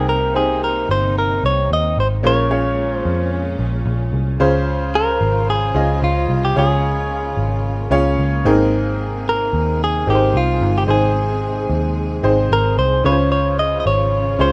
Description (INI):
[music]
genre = pop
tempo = 111 BPM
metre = 4/4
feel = straight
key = unclear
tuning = A4 = 440 Hz
[part]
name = direct-recorded clean electric guitar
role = melody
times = 0.0-14.5 s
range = F4 to Eb5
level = -22 LUFS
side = equal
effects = none
[part]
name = bright upright piano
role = accompaniment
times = 0.0-14.5 s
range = Ab2 to Eb5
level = -23 LUFS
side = equal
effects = none
[part]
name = clear symphonic string section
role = sustained chords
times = 0.0-14.5 s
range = Bb2 to C5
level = -32 LUFS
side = equal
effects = none
[part]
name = vintage muted picked electric bass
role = bass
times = 0.0-14.5 s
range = G1 to F2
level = -22 LUFS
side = equal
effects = none
[sound]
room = moderate studio reverb, RT60 0.6 s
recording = rough home demo mix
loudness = -18 LUFS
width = mono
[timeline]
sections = 0.0-4.4 A section; 4.4-14.5 B section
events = none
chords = 0.0 Cm7; 2.2 Bbm7; 4.4 Dbmaj7; 8.5 Abadd9; 13.0 Dbmaj7